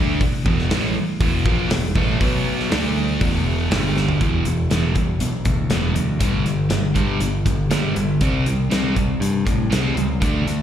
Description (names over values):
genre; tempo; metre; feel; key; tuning
hard rock; 120 BPM; 4/4; straight; E minor; A4 = 442 Hz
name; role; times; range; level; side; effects
crunchy overdriven guitar; riff; 0.0-10.6 s; E2 to D4; -24 LUFS; right 9 dB; slapback echo
sludgy distorted guitar; riff; 0.0-10.6 s; E2 to D4; -24 LUFS; left 8 dB; overdrive
modern bright picked electric bass; bass; 0.0-10.6 s; E1 to A2; -24 LUFS; equal; none
big rock drum kit; drums; 0.2-10.6 s; hi-hat, kick drum, snare drum, toms; -22 LUFS; equal; none
room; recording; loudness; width
light reverb; live gig heard through the venue's PA, recital hall reverb; -17 LUFS; side -10 dB against mid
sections
0.0-4.2 A section; 4.2-10.6 B section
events
drum fill 4.0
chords
0.0 E5; 2.2 B5; 2.7 D5; 3.2 E5; 3.7 G5; 4.2 E5; 6.2 G5; 8.2 C5